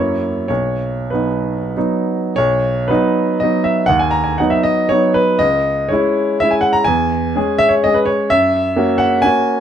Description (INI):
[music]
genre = classical, romantic triple-time dance for piano with dotted rhythms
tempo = 91-137 BPM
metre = 3/4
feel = rubato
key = B major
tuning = A4 = 440 Hz
[part]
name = clear baby grand piano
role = solo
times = 0.0-9.6 s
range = B1 to A#5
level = -13 LUFS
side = equal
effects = none
[sound]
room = light reverb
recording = close, detailed microphones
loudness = -13 LUFS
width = side -9 dB against mid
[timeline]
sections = 0.0-2.4 A section; 2.4-9.6 B section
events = none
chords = 0.5 B; 3.9 B/D#; 5.4 C#m; 6.9 C#m/E; 8.3 F#